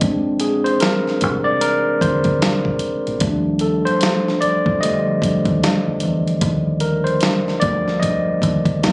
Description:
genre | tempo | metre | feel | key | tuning
R&B, neo-soul | 75 BPM | 4/4 | swing 60% on 16ths | unclear | A4 = 441 Hz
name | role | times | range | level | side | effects
overdriven tine electric piano | accompaniment | 0.0-8.9 s | D3 to Eb5 | -17 LUFS | equal | none
deep dub fingered electric bass | bass | 0.0-8.9 s | Bb1 to F2 | -24 LUFS | equal | none
dusty soul sampler-style drum kit | drums | 0.0-8.9 s | hi-hat, kick drum, snare drum | -20 LUFS | equal | none
room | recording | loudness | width
light reverb | recorded on a phone in the room, club reverb, compression | -15 LUFS | side -26 dB against mid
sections
0.0-8.9 A section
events
tine electric piano solo 0.0-8.9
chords
0.0 Bb9; 3.2 Ebmaj9#11

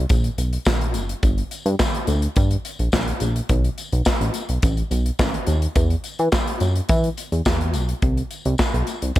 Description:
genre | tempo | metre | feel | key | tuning
early-eighties boogie funk | 106 BPM | 4/4 | straight | unclear | A4 = 439 Hz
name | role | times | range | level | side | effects
chorused synth bass | bass | 0.0-9.2 s | F#1 to E3 | -20 LUFS | equal | none
modern studio drum kit | drums | 0.1-9.2 s | handclaps, hi-hat, kick drum, snare drum | -21 LUFS | equal | gated reverb
tambourine | percussion | 0.1-9.2 s | none | -38 LUFS | left 4 dB | none
room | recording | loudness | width
small room ambience | none | -19 LUFS | side -15 dB against mid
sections
0.0-9.2 A section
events
none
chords
none

